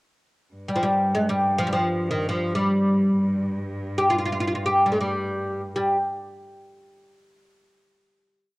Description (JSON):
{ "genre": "Persian modal ensemble", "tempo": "free time", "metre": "none", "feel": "none", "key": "unclear", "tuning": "A4 = 441 Hz", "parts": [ { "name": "clear cello", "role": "drone", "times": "0.5-5.8 s", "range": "G2", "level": "-32 LUFS", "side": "equal", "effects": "none" }, { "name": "oud", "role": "melody", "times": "0.7-6.0 s", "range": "Eb3 to G4", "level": "-21 LUFS", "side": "equal", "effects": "cassette tape" } ], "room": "moderate spring reverb, RT60 1.6 s, small room ambience", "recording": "home recording on cassette", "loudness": "-21 LUFS", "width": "side -22 dB against mid", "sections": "0.5-5.8 free-time section; 5.8-7.1 final note", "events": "none", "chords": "none" }